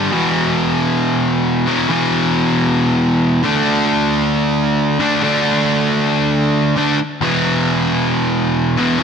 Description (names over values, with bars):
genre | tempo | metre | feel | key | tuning
rock | 135 BPM | 4/4 | straight | unclear | A4 = 439 Hz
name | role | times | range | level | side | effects
overdriven electric guitar | solo | 0.0-9.0 s | E2 to D4 | -14 LUFS | equal | none
room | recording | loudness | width
moderate plate reverb, RT60 2.3 s | bright 1980s-style digital production | -14 LUFS | side -6 dB against mid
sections
0.1-9.0 A section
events
none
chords
0.1 E5; 3.4 D5; 7.2 E5